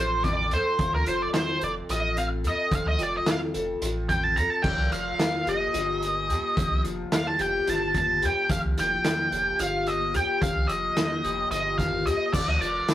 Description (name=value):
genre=psychedelic rock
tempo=218 BPM (eighths)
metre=7/8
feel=straight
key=unclear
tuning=A4 = 443 Hz
part: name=octave-fuzz lead guitar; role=melody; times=0.0-12.9 s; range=Bb4 to Bb5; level=-26 LUFS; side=equal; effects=wah, distortion
part: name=electric guitar through a small old amp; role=riff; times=0.0-12.9 s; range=F3 to A4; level=-31 LUFS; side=left 2 dB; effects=phaser
part: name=pure sine sub bass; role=bass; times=0.0-12.8 s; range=F1 to F2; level=-31 LUFS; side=equal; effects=none
part: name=vintage drum kit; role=drums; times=0.2-12.9 s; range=crash cymbal, hi-hat, kick drum, snare drum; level=-29 LUFS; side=equal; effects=none
part: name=tambourine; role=percussion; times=12.3-12.5 s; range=none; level=-43 LUFS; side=left 4 dB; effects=none
room=moderate studio reverb, RT60 0.7 s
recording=rough rehearsal-room recording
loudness=-23 LUFS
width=side -13 dB against mid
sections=0.0-12.9 A section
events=lead electric guitar solo 0.0-12.9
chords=0.0 F; 4.6 Eb/F; 12.3 N.C.